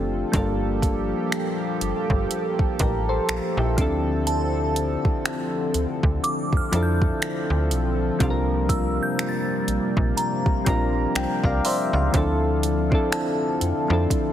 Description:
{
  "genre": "contemporary R&B",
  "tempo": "61 BPM",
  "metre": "4/4",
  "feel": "swing 58% on 16ths",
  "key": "D minor",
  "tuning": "A4 = 440 Hz",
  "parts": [
    { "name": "soft electric-piano-like synth keys", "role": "accompaniment", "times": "0.0-14.3 s", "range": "F3 to Bb5", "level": "-25 LUFS", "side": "left 1 dB", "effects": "chorus" },
    { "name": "chorused pulse-width pad", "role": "sustained chords", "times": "0.0-14.3 s", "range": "C3 to A4", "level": "-28 LUFS", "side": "equal", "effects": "none" },
    { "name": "slap-like FM bass", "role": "bass", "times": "0.0-14.1 s", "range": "F#1 to F2", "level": "-25 LUFS", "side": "equal", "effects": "none" },
    { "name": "smooth R&B drum kit", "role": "drums", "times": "0.3-14.3 s", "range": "finger snaps, hi-hat, kick drum", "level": "-25 LUFS", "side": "equal", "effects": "none" },
    { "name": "glassy synth bell", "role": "texture", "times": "4.3-14.3 s", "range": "A5 to A6", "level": "-31 LUFS", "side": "right 1 dB", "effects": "chorus, ping-pong delay" }
  ],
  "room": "light reverb, digital ambience",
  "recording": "heavily compressed radio sound",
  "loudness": "-20 LUFS",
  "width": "side -11 dB against mid",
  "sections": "0.0-12.1 A section; 12.1-14.3 B section",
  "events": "synth keys fill 10.2-12.1",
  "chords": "0.3 Gm9; 3.8 Dm7; 8.2 C7sus4; 12.1 Dm7"
}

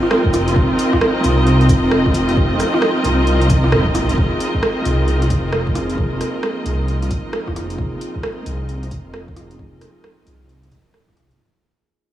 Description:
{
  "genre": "future garage",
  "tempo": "133 BPM",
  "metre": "4/4",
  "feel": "swing 63% on 16ths",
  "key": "F minor",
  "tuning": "A4 = 440 Hz",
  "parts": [
    { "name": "felt-muted upright piano", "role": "accompaniment", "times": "0.0-11.4 s", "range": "F3 to Bb4", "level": "-24 LUFS", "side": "right 1 dB", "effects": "sidechain pumping, diffuse ambient delay" },
    { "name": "muted studio string section", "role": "sustained chords", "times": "0.0-11.4 s", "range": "C4 to Eb5", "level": "-20 LUFS", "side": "equal", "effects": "sidechain pumping" },
    { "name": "deep house drum kit", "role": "drums", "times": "0.0-11.4 s", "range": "cabasa, hi-hat, rim click", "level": "-22 LUFS", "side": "right 1 dB", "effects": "overdrive" },
    { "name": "swelling detuned saw bass", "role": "bass", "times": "0.3-11.4 s", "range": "Eb1 to C2", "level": "-18 LUFS", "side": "equal", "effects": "sidechain pumping" },
    { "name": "electronic kick drum", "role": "drums", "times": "0.3-11.2 s", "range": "none", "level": "-20 LUFS", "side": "equal", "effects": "overdrive" },
    { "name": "drifting glass-harmonics texture", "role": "texture", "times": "5.2-11.4 s", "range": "Bb3 to Bb4", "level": "-36 LUFS", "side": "right 2 dB", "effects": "chorus, built-in reverb" }
  ],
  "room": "moderate lush hall reverb, RT60 2.0 s, digital ambience",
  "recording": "dreamy mix soaked in reverb, vinyl crackle, small room ambience",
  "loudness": "-15 LUFS",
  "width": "side -12 dB against mid",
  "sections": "0.0-4.2 A section; 4.2-11.4 B section",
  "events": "fade-out 4.2-11.4",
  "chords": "0.0 Eb/F; 4.2 Fm7"
}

